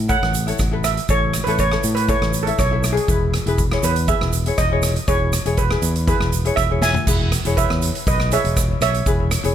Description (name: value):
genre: calypso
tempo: 120 BPM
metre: 4/4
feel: straight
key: E major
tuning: A4 = 440 Hz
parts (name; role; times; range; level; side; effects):
- fingered electric bass; bass; 0.0-9.5 s; E1 to A2; -21 LUFS; equal; none
- steel pan; melody; 0.1-9.5 s; G#4 to G#5; -22 LUFS; right 3 dB; ping-pong delay
- ukulele; accompaniment; 0.1-9.5 s; E4 to E5; -26 LUFS; left 4 dB; none
- street-band drum kit; drums; 0.1-9.5 s; crash cymbal, hi-hat, kick drum, rim click, snare drum, toms; -22 LUFS; equal; none
- tube shaker; percussion; 0.1-9.4 s; none; -30 LUFS; right 9 dB; none
room: light reverb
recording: none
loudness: -16 LUFS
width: side -10 dB against mid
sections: 0.0-7.1 A section; 7.1-9.5 B section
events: steel pan solo 0.0-7.1; drum fill 6.8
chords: 0.0 A; 3.1 E